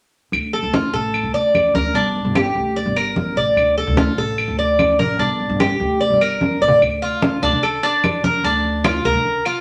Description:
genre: latin, Cuban son and guajira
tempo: 148 BPM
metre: 4/4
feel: straight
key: D minor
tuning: A4 = 440 Hz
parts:
  - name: upright bass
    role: bass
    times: 0.3-9.3 s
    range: G1 to D3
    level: -26 LUFS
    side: equal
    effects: none
  - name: claves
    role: percussion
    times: 0.3-9.6 s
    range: none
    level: -27 LUFS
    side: equal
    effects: none
  - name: congas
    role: percussion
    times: 0.3-9.6 s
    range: none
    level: -25 LUFS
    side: equal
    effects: none
  - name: Cuban tres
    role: arpeggios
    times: 0.5-9.6 s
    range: D4 to D5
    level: -20 LUFS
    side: equal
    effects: none
room: wet studio reverb, RT60 0.8 s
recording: none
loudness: -18 LUFS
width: mono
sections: 0.3-6.8 A section; 6.8-9.6 B section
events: drum fill 6.4-6.8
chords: 0.3 Dm; 2.0 Gm; 3.6 Dm; 5.2 Gm; 6.8 Dm; 8.4 Bb/D

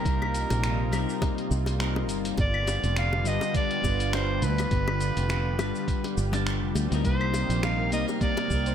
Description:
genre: sunset chillout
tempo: 103 BPM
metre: 4/4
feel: swing 56% on 16ths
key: C minor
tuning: A4 = 440 Hz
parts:
  - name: breathy soprano saxophone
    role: melody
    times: 0.0-8.7 s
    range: Bb4 to F5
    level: -31 LUFS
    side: equal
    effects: digital delay
  - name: clean electric guitar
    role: accompaniment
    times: 0.0-8.7 s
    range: G3 to D5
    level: -32 LUFS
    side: moving between left 8 dB and equal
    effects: auto-pan, vintage 12-bit sampler grit, digital delay
  - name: lush unison pad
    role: sustained chords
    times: 0.0-8.7 s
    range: C3 to G4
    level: -34 LUFS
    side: right 2 dB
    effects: chorus
  - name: fingered electric bass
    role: bass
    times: 0.1-8.7 s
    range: F1 to D2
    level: -27 LUFS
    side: right 1 dB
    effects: tube saturation
  - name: dusty soul sampler-style drum kit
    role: drums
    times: 0.1-8.7 s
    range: claves, finger snaps, hi-hat, shaker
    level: -36 LUFS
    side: left 2 dB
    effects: none
  - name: electronic kick drum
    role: drums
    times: 0.1-8.6 s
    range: none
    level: -28 LUFS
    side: right 1 dB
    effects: none
  - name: bongos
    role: percussion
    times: 0.2-8.5 s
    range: none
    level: -35 LUFS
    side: left 4 dB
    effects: none
  - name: Celtic harp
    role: arpeggios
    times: 7.0-8.7 s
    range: Bb3 to C5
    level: -33 LUFS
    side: right 2 dB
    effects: digital delay
  - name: drifting glass-harmonics texture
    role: texture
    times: 7.5-8.7 s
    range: F6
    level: -43 LUFS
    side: right 8 dB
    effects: chorus, built-in reverb
room: light reverb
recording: none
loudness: -24 LUFS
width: side -9 dB against mid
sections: 0.0-8.7 A section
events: none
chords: 0.0 Cm7; 2.4 G7; 7.0 Cm7

